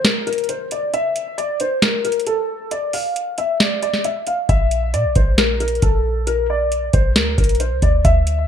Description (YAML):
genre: hip hop, trap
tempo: 135 BPM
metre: 4/4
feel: half-time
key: unclear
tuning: A4 = 442 Hz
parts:
  - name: dark concert grand piano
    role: melody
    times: 0.0-8.5 s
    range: A4 to F5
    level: -20 LUFS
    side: left 2 dB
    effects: analog chorus
  - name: booming analog drum machine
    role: drums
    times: 0.0-8.4 s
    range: hi-hat, kick drum, snare drum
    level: -18 LUFS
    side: equal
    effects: gated reverb
  - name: downlifter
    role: sound effects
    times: 0.0-0.9 s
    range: none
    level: -44 LUFS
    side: right 2 dB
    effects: none
  - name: clean 808-style bass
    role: bass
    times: 4.5-8.5 s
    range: Bb1 to Bb2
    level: -19 LUFS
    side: equal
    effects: none
room: light reverb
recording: bright 1980s-style digital production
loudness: -16 LUFS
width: side -9 dB against mid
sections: 0.0-8.5 A section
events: break 0.0-4.5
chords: 0.0 N.C.; 4.5 Bb